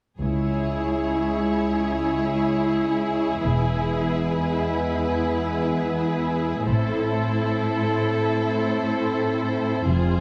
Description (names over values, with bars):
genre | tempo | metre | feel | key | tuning
cinematic, epic orchestral film score | free time | none | none | unclear | A4 = 439 Hz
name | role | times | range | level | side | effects
warm symphonic violin section | melody | 0.2-10.2 s | B4 to C#5 | -37 LUFS | equal | none
rich symphonic violin section | second line | 0.2-10.2 s | G#4 to A4 | -31 LUFS | equal | none
rich symphonic viola section | accompaniment | 0.2-10.2 s | E4 to F4 | -31 LUFS | equal | none
warm French horn section | sustained chords | 0.2-10.2 s | G#3 to E4 | -30 LUFS | equal | none
rich symphonic double bass section | bass | 0.2-10.2 s | E1 to C#2 | -28 LUFS | equal | none
warm symphonic cello section | bass | 0.2-10.2 s | C#2 to A2 | -29 LUFS | equal | none
room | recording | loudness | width
moderate scoring stage reverb, RT60 2.0 s | none | -23 LUFS | mono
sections
0.2-10.2 A section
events
build-up 0.2-10.2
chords
0.2 C#m; 3.4 E; 6.7 Am